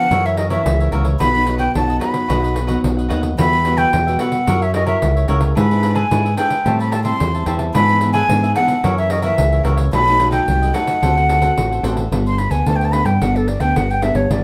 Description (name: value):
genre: samba and choro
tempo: 110 BPM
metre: 4/4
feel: straight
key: unclear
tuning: A4 = 439 Hz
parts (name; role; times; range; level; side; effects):
- breathy concert flute; melody; 0.0-14.4 s; A4 to C6; -20 LUFS; equal; none
- cavaquinho; accompaniment; 0.0-12.1 s; D4 to A5; -29 LUFS; equal; none
- nylon-string guitar; accompaniment; 0.0-14.4 s; F#2 to B4; -25 LUFS; equal; none
- growling fingered electric bass; bass; 0.1-14.4 s; G1 to A2; -21 LUFS; equal; overdrive
- pandeiro; percussion; 0.1-14.4 s; none; -26 LUFS; equal; none
room: moderate studio reverb, RT60 0.5 s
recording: band playing live in one room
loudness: -17 LUFS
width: mono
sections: 0.0-12.1 A section; 12.1-14.4 B section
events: flute solo 12.1-14.4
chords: 0.1 F#7; 1.2 B; 3.4 Emadd9; 4.5 F#7; 5.6 E7/G#; 6.7 Am7; 7.8 E7/G#; 8.8 F#7; 9.9 B7; 11.0 D7; 12.1 Gadd9